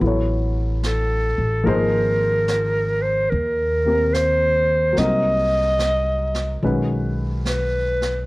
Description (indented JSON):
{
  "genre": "jazz ballad",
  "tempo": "72 BPM",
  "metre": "4/4",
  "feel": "swing 66% on 8ths",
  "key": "unclear",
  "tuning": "A4 = 442 Hz",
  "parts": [
    { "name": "breathy clarinet", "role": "melody", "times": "0.0-8.3 s", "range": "A4 to Eb5", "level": "-20 LUFS", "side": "equal", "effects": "none" },
    { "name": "dark baby grand piano", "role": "accompaniment", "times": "0.0-8.3 s", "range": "D#3 to C#5", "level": "-25 LUFS", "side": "left 2 dB", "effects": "none" },
    { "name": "upright bass", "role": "bass", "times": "0.0-8.3 s", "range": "Ab1 to Eb2", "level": "-23 LUFS", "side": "equal", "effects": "none" },
    { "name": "jazz brush drum kit", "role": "drums", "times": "0.0-8.3 s", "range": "brushed snare drum, hi-hat, snare drum", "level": "-33 LUFS", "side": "right 2 dB", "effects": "none" }
  ],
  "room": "light reverb",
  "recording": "worn, warbling old tape, cassette tape, warbly pitch drift",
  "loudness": "-18 LUFS",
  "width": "side -21 dB against mid",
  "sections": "0.0-8.3 A section",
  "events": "none",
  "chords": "0.0 Aadd9; 1.7 Ab69; 5.0 Cm7b5; 6.6 Badd9"
}